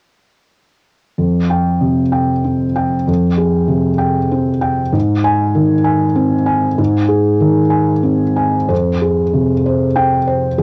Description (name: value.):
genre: neoclassical minimalist piano.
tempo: 96 BPM.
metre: 3/4.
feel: rubato.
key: F minor.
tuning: A4 = 441 Hz.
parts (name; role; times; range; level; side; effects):
felt-muted upright piano; solo; 1.2-10.6 s; F2 to Ab5; -15 LUFS; equal; cassette tape.
room: moderate booth ambience, RT60 0.2 s.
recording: home recording on cassette.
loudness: -15 LUFS.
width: mono.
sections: 1.2-8.7 A section; 8.7-10.6 B section.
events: none.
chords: 1.2 Fmadd9; 4.9 Ab; 8.7 Fmadd9.